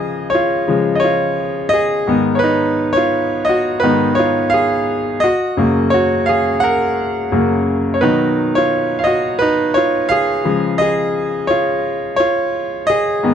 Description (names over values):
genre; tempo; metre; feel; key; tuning
pop; 86 BPM; 4/4; swing 56% on 16ths; Db mixolydian; A4 = 435 Hz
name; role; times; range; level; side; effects
bright concert grand piano; solo; 0.0-13.3 s; Gb2 to Gb5; -14 LUFS; equal; none
room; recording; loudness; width
studio ambience; dry, close 1970s-style studio recording; -14 LUFS; side -8 dB against mid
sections
0.0-13.3 A section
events
grand piano solo 0.0-13.3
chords
0.0 Dbadd9; 2.1 Abm; 5.2 Gb; 8.0 Cb; 10.5 Dbadd9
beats
0.34 1.04 1.74 | 2.44 3.13 3.83 4.53 | 5.23 5.92 6.62 7.32 | 8.02 8.72 9.41 10.11 | 10.81 11.51 12.20 12.90